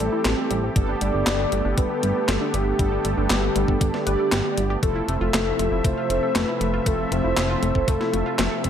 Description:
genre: synthwave.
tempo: 118 BPM.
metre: 4/4.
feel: straight.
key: unclear.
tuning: A4 = 442 Hz.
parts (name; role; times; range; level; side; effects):
soft octave-layered synth lead; melody; 0.0-8.6 s; G4 to D5; -26 LUFS; left 1 dB; chorus, phaser, ping-pong delay.
warm analog pad; sustained chords; 0.0-8.7 s; C3 to E5; -28 LUFS; left 1 dB; chorus, sidechain pumping.
analog pluck; arpeggios; 0.0-8.7 s; G3 to B4; -30 LUFS; left 1 dB; chorus, ping-pong delay.
mellow synth brass; stabs; 0.0-8.7 s; B3 to D5; -29 LUFS; right 4 dB; chorus, ping-pong delay.
chorused synth bass; bass; 0.0-8.7 s; F1 to A1; -26 LUFS; equal; none.
clean 12-bit digital drum machine; drums; 0.0-8.7 s; handclaps, hi-hat, snare drum; -26 LUFS; equal; overdrive, gated reverb.
electronic kick drum; drums; 0.8-8.0 s; none; -22 LUFS; equal; overdrive.
room: light reverb, digital ambience.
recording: none.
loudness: -20 LUFS.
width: side -9 dB against mid.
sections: 0.0-8.7 A section.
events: none.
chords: 0.0 Am7; 0.8 Gadd9; 4.8 Fmaj7.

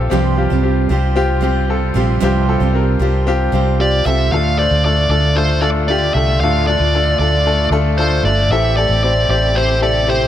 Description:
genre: piano-driven pop.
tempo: 114 BPM.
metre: 4/4.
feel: straight.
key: D minor.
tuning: A4 = 440 Hz.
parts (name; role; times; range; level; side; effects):
clear concert grand piano; accompaniment; 0.0-10.3 s; G2 to C5; -19 LUFS; left 4 dB; none.
muted studio string section; sustained chords; 0.0-10.3 s; C3 to G4; -26 LUFS; right 1 dB; none.
vintage muted fingered electric bass; bass; 0.0-10.3 s; G1 to D2; -17 LUFS; equal; none.
picked steel-string acoustic guitar; riff; 0.1-4.3 s; C3 to C5; -20 LUFS; right 10 dB; none.
dark smooth lead guitar; melody; 3.8-10.3 s; C5 to F5; -17 LUFS; right 1 dB; overdrive.
room: small room reverb.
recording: none.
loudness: -13 LUFS.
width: side -11 dB against mid.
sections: 0.1-4.3 A section; 4.3-10.3 B section.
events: none.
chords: 0.1 Csus4; 4.3 Dm; 8.5 Am7.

